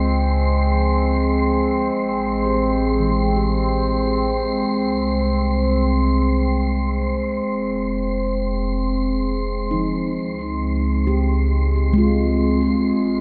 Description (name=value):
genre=ambient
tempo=66 BPM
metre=3/4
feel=straight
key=unclear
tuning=A4 = 440 Hz
part: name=handpan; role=arpeggios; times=0.0-13.1 s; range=E3 to G4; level=-27 LUFS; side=equal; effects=diffuse ambient delay, shimmer reverb
part: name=warm sub bass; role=bass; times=0.0-13.2 s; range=F1 to Db2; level=-24 LUFS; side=equal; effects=none
part: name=analog drone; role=drone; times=0.0-13.2 s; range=Ab3 to C4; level=-23 LUFS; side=equal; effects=chorus
part: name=wind-like tuned noise texture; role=texture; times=0.0-13.2 s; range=C6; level=-32 LUFS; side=equal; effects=built-in reverb, shimmer reverb
room=wet huge ambient reverb, RT60 8.1 s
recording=in a vast, echoing space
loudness=-20 LUFS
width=mono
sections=0.0-13.2 A section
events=fade-in on handpan 0.0-13.2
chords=0.0 Dbmaj7; 1.9 Am7; 4.7 C5; 7.5 Fm7; 10.2 Dbmaj7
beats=0.12 1.03 | 1.95 2.86 3.77 | 4.69 5.61 6.53 | 7.46 8.39 9.31 | 10.23 11.15 12.06 | 12.97